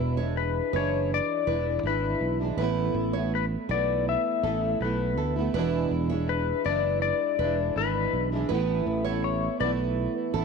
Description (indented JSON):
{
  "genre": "acoustic pop",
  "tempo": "81 BPM",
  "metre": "4/4",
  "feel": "straight",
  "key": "A major",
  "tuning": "A4 = 440 Hz",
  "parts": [
    { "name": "fingerpicked plugged-in steel-string acoustic guitar", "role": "accompaniment", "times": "0.0-10.4 s", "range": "E2 to E4", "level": "-29 LUFS", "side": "right 2 dB", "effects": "double-tracked left and right" },
    { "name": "fingered electric bass", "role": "bass", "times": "0.0-10.4 s", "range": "E1 to D2", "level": "-30 LUFS", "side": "right 2 dB", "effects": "tube saturation" },
    { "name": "nylon-string guitar", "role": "arpeggios", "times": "0.2-10.4 s", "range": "A4 to C#5", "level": "-34 LUFS", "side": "right 14 dB", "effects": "none" },
    { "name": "clean lap steel guitar", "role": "melody", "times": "0.4-9.7 s", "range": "B4 to E5", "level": "-28 LUFS", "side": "left 13 dB", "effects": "none" }
  ],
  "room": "light reverb, small room ambience",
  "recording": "1960s-style stereo with parts hard left and right",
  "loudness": "-24 LUFS",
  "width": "side -5 dB against mid",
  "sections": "0.0-10.4 A section",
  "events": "none",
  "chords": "0.0 E7; 2.6 Asus2; 5.5 E7; 8.5 Asus2",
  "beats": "0.36 1.10 1.84 | 2.58 3.32 4.06 4.80 | 5.54 6.28 7.02 7.76 | 8.50 9.24 9.98"
}